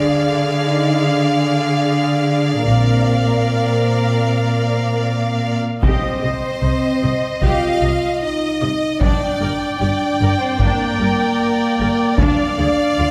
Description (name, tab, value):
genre	cinematic, epic orchestral film score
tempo	76 BPM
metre	4/4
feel	straight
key	C minor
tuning	A4 = 439 Hz
part	warm symphonic violin section	melody	0.0-13.1 s	Eb5 to G5	-26 LUFS	equal	none
part	clear studio violin section	second line	0.0-13.1 s	Bb4 to F5	-28 LUFS	equal	none
part	rich symphonic viola section	accompaniment	0.0-13.1 s	D4 to Eb5	-27 LUFS	equal	none
part	dark French horn section	sustained chords	0.0-13.1 s	Bb3 to F4	-23 LUFS	equal	none
part	dark symphonic double bass section	bass	0.0-13.1 s	G1 to D2	-25 LUFS	equal	none
part	warm symphonic cello section	bass	0.0-13.1 s	G2 to D3	-23 LUFS	equal	none
part	solo taiko drums	drums	5.8-12.9 s	none	-23 LUFS	equal	none
room	wet concert hall reverb, RT60 2.2 s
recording	none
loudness	-17 LUFS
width	mono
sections	0.0-5.8 A section; 5.8-13.1 B section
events	none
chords	0.0 Ddim; 2.7 Bbadd9; 5.8 Cm; 9.0 Gm; 12.2 Dm